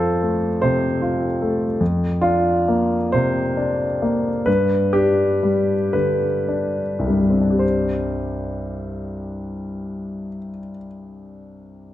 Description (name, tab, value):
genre	neoclassical minimalist piano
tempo	34-52 BPM (dotted quarters)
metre	6/8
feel	rubato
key	unclear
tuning	A4 = 439 Hz
part	warm grand piano	solo	0.0-11.9 s	C2 to C5	-19 LUFS	left 1 dB	none
room	moderate recital hall reverb, RT60 1.5 s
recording	dark, warm production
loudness	-18 LUFS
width	side -13 dB against mid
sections	0.0-7.6 A section; 7.6-10.9 B section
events	slowing down 0.6-7.6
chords	0.0 F; 1.8 Bbadd9/F; 4.5 G; 7.6 Csus2